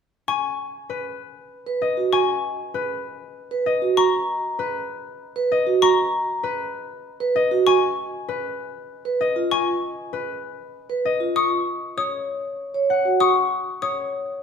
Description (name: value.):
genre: classical, minimalist pattern music.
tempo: 195 BPM.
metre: 6/4.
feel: straight.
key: G# minor.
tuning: A4 = 441 Hz.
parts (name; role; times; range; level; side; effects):
concert harp; melody; 0.3-14.4 s; B4 to C#6; -25 LUFS; left 6 dB; none.
xylophone with plastic mallets; arpeggios; 0.3-14.0 s; C#6 to D#6; -26 LUFS; left 4 dB; none.
vibraphone with soft mallets; arpeggios; 1.7-13.3 s; E#4 to C#5; -21 LUFS; right 4 dB; none.
room: wet large studio reverb, RT60 1.3 s.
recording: heard from further back in the room.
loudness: -20 LUFS.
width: side -6 dB against mid.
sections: 0.3-14.4 A section.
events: none.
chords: 0.3 G#m7; 7.7 C#7; 11.4 F#sus2.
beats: | 0.28 0.59 0.90 1.20 1.51 1.82 | 2.13 2.44 2.74 3.05 3.36 3.67 | 3.97 4.28 4.59 4.90 5.20 5.51 | 5.82 6.13 6.43 6.74 7.05 7.36 | 7.67 7.97 8.28 8.59 8.90 9.20 | 9.51 9.82 10.13 10.44 10.74 11.05 | 11.36 11.67 11.97 12.28 12.59 12.90 | 13.20 13.51 13.82 14.13.